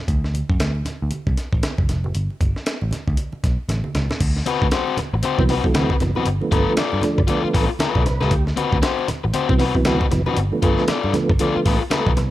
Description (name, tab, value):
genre	funk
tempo	117 BPM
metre	4/4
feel	swing 60% on 16ths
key	unclear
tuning	A4 = 437 Hz
part	vintage muted picked electric bass	bass	0.1-12.3 s	F1 to G2	-22 LUFS	equal	none
part	breakbeat sampler-style drum kit	drums	0.1-12.3 s	crash cymbal, hi-hat, kick drum, snare drum	-22 LUFS	equal	none
part	congas	percussion	0.3-12.3 s	none	-31 LUFS	right 2 dB	none
part	crunchy overdriven guitar	accompaniment	4.5-12.2 s	C4 to D5	-22 LUFS	left 6 dB	tube saturation
part	tonewheel organ	stabs	5.4-12.3 s	C3 to D5	-22 LUFS	right 3 dB	chorus vibrato, slow rotary speaker
room	little or no reverb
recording	none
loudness	-18 LUFS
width	side -14 dB against mid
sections	0.0-4.2 A section; 4.2-12.3 B section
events	drum fill 3.7-4.2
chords	0.1 D; 2.1 Gadd9; 4.2 D13; 6.3 G9; 8.3 D13; 10.4 G9